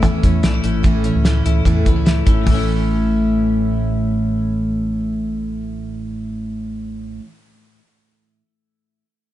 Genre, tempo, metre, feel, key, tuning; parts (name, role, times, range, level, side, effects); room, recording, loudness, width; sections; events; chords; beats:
jangly indie pop; 147 BPM; 4/4; straight; A major; A4 = 440 Hz
picked steel-string acoustic guitar; accompaniment; 0.0-7.3 s; A2 to E4; -22 LUFS; right 5 dB
twelve-string electric guitar; arpeggios; 0.0-7.3 s; A2 to E4; -22 LUFS; left 5 dB
deep dub fingered electric bass; bass; 0.0-7.2 s; G#1 to E2; -21 LUFS; equal
cloth-damped thuddy drum kit; drums; 0.0-2.6 s; hi-hat, kick drum, snare drum, toms; -17 LUFS; equal
little or no reverb; dark, warm production, nothing above 11.0 kHz; -15 LUFS; side -13 dB against mid
0.0-2.5 A section; 2.5-5.7 B section
0.0 A
0.03 0.43 | 0.84 1.25 1.66 2.06 | 2.47 2.88 3.28 3.69 | 4.10 4.50 4.91 5.32